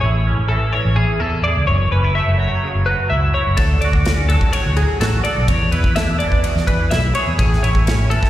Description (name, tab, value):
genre	math rock and midwest emo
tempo	126 BPM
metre	4/4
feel	straight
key	A major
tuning	A4 = 440 Hz
part	twangy electric guitar	accompaniment	0.0-8.3 s	E2 to A4	-24 LUFS	right 5 dB	ensemble chorus, slapback echo
part	twelve-string electric guitar	arpeggios	0.0-8.3 s	G#4 to E5	-21 LUFS	left 2 dB	analog chorus, slapback echo
part	fingered electric bass	bass	0.0-8.2 s	F#1 to E2	-17 LUFS	equal	none
part	modern studio drum kit	drums	3.6-8.3 s	kick drum, ride cymbal, snare drum	-19 LUFS	equal	none
room	little or no reverb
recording	live gig heard through the venue's PA, recital hall reverb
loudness	-14 LUFS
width	side -13 dB against mid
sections	0.0-8.3 A section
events	none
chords	0.0 Amaj7; 1.7 F#m7; 3.6 Dmaj7; 5.5 E7(no3); 7.4 Amaj7